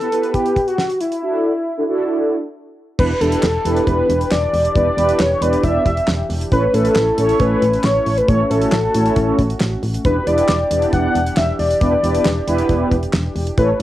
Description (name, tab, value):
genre	synth-pop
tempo	136 BPM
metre	4/4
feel	straight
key	E dorian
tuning	A4 = 443 Hz
part	octave-doubled lead	melody	0.0-13.8 s	E4 to F#5	-19 LUFS	left 1 dB	chorus, cassette tape, analog delay, plate reverb
part	mellow synth brass	accompaniment	0.0-13.8 s	A3 to D5	-19 LUFS	right 1 dB	chorus, cassette tape, plate reverb
part	damped 70s drum kit	drums	0.0-13.8 s	crash cymbal, handclaps, hi-hat, kick drum, snare drum	-22 LUFS	equal	cassette tape
part	warm analog pad	sustained chords	3.0-13.8 s	E3 to G4	-27 LUFS	equal	chorus, cassette tape
part	solid FM bass	bass	3.0-13.8 s	E1 to A1	-21 LUFS	equal	none
room	wet small room reverb, RT60 0.5 s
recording	home recording on cassette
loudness	-14 LUFS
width	side -14 dB against mid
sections	0.0-3.0 A section; 3.0-13.8 B section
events	none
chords	0.0 Em; 1.2 Dadd9; 3.0 Em7; 6.5 A; 10.0 Em7